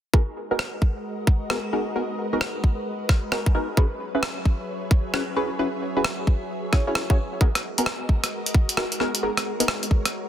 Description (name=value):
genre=UK garage, two-step garage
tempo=132 BPM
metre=4/4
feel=swing 64% on 16ths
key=G# minor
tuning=A4 = 443 Hz
part: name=soft string machine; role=sustained chords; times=0.4-10.3 s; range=F#3 to E5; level=-33 LUFS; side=equal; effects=ensemble chorus, sidechain pumping
part: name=punchy chord stab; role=stabs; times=0.1-9.7 s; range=B3 to C#5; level=-27 LUFS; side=equal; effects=chorus, phaser, tape echo
part: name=electronic kick drum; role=drums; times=0.1-10.0 s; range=none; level=-19 LUFS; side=equal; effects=overdrive
part: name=breakbeat sampler-style drum kit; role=drums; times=0.6-10.1 s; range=hi-hat, rim click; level=-26 LUFS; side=equal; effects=soft clipping on snare
room=light reverb, digital ambience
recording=dense, heavily limited modern master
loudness=-22 LUFS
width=side -11 dB against mid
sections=0.1-10.3 A section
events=none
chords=0.1 G#m9; 3.8 F#7sus4; 7.4 G#m9